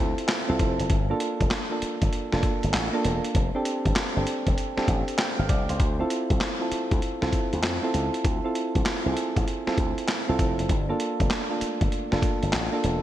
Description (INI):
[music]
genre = R&B, new jack swing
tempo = 98 BPM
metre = 4/4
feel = swing 66% on 16ths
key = unclear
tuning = A4 = 440 Hz
[part]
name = soft electric-piano-like synth keys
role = accompaniment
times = 0.0-13.0 s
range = A3 to G5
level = -27 LUFS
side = right 1 dB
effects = chorus
[part]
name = slap bass with an envelope filter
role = bass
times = 0.0-13.0 s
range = E1 to F2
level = -27 LUFS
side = equal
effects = none
[part]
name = boom bap sampler-style drum kit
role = drums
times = 0.2-13.0 s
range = handclaps, hi-hat, kick drum, snare drum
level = -26 LUFS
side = equal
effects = none
[sound]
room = light reverb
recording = bright 1980s-style digital production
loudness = -23 LUFS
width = side -13 dB against mid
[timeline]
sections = 0.0-13.0 A section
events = none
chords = 0.0 Dm9; 0.9 Gm9; 3.3 F69; 5.8 Dm9; 10.7 Gm9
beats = 0.28 | 0.90 1.51 2.12 2.73 | 3.35 3.96 4.57 5.18 | 5.79 6.41 7.02 7.63 | 8.24 8.86 9.47 10.08 | 10.69 11.30 11.92 12.53